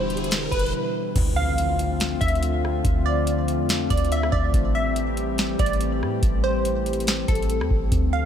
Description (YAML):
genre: hip hop, atmospheric cloud-rap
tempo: 142 BPM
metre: 4/4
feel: half-time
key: D dorian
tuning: A4 = 440 Hz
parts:
  - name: glassy wavetable pluck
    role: melody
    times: 0.0-8.3 s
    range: A4 to F5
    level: -27 LUFS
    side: right 2 dB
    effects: chorus, digital delay
  - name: warbly tape-like pad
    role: sustained chords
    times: 0.0-8.3 s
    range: B2 to G4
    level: -26 LUFS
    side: left 3 dB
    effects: chorus, built-in reverb, sidechain pumping
  - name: soft 808-style bass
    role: bass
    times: 0.0-8.3 s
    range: E1 to A2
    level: -25 LUFS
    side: equal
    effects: none
  - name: riser and impact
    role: sound effects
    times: 0.0-2.8 s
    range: none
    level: -32 LUFS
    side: right 1 dB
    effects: none
  - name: booming analog drum machine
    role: drums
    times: 0.1-8.1 s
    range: crash cymbal, hi-hat, kick drum, rim click, snare drum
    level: -25 LUFS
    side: equal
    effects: none
room: digital ambience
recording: none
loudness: -20 LUFS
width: side -9 dB against mid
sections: 0.0-1.2 A section; 1.2-8.3 B section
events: riser 0.0-1.2; break 0.7-1.2; impact 1.2-2.8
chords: 0.0 Em7; 1.2 Dm7; 4.5 Am7